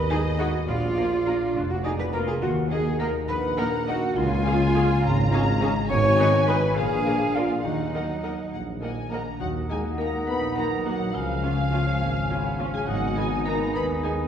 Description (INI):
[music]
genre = cinematic, playful, whimsical film cue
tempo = 69 BPM (dotted quarters)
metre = 6/8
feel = straight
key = Eb minor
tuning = A4 = 440 Hz
[part]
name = marimba with hard mallets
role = melody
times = 0.0-14.3 s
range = Eb4 to Db5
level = -33 LUFS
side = left 1 dB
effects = none
[part]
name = muted studio violin section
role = melody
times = 0.0-14.1 s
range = D5 to Cb6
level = -34 LUFS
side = left 3 dB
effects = none
[part]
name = mellow hollow silver concert flute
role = second line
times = 0.0-14.3 s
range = Eb5 to Db6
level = -33 LUFS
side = equal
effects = none
[part]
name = concert harp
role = arpeggios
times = 0.0-14.3 s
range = Ab2 to F6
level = -33 LUFS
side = left 4 dB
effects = none
[part]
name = mellow tuba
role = bass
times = 0.0-14.3 s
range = F1 to Eb2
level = -30 LUFS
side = equal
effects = none
[part]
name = muted studio double bass section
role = bass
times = 0.0-14.3 s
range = F1 to Eb2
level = -29 LUFS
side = right 1 dB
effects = none
[part]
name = dark clarinet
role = second line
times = 0.1-14.3 s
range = Cb4 to Db5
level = -31 LUFS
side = equal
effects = none
[part]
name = muted studio violin section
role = second line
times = 0.1-14.1 s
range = D5 to Cb6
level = -37 LUFS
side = left 1 dB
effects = none
[part]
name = muted chamber viola section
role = accompaniment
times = 0.1-14.1 s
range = Bb3 to Cb5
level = -34 LUFS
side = right 2 dB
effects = none
[part]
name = mellow French horn section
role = sustained chords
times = 0.1-14.2 s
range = F3 to Eb4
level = -33 LUFS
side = left 2 dB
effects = none
[part]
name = muted studio cello section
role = bass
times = 0.1-14.3 s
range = Gb3 to Db5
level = -31 LUFS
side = right 2 dB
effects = none
[part]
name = warm oboe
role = second line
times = 9.4-14.3 s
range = Eb5 to F5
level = -36 LUFS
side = right 5 dB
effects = none
[sound]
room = wet scoring stage reverb, RT60 1.8 s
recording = heard from further back in the room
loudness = -22 LUFS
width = side -8 dB against mid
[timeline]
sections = 0.0-9.4 A section; 9.4-14.3 B section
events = none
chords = 0.0 Abm7; 0.7 Bb; 2.4 Ebm; 4.2 Db; 5.9 Abm; 6.8 Bb7; 7.6 Ebm; 11.1 Db; 12.9 Abm